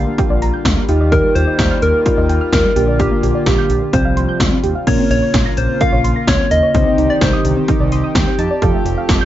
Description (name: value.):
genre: synth-pop.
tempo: 128 BPM.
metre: 4/4.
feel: straight.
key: unclear.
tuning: A4 = 440 Hz.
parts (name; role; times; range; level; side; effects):
soft struck synth lead; melody; 0.0-7.7 s; G4 to F5; -18 LUFS; equal; chorus, tremolo.
soft electric-piano-like synth keys; accompaniment; 0.0-9.2 s; Bb3 to A5; -22 LUFS; left 1 dB; chorus.
chorused pulse-width pad; sustained chords; 0.0-9.2 s; C3 to G4; -21 LUFS; equal; none.
soft round pluck; arpeggios; 0.0-9.2 s; Db3 to Bb6; -23 LUFS; right 2 dB; chorus, digital delay.
smooth gliding synth bass; bass; 0.0-9.2 s; F1 to F2; -18 LUFS; equal; none.
80s electronic pad drums; drums; 0.2-9.2 s; crash cymbal, hi-hat, kick drum, snare drum; -17 LUFS; equal; overdrive.
room: moderate small room reverb, RT60 0.6 s.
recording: nothing above 7.7 kHz.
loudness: -12 LUFS.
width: side -12 dB against mid.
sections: 0.0-4.9 A section; 4.9-9.2 B section.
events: synth keys fill 7.7-8.6.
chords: 0.0 Bb6; 0.9 Ebadd9; 2.8 Bb6; 3.9 Csus4; 4.9 Bbmadd9; 6.7 Cmadd9; 8.6 Fadd9.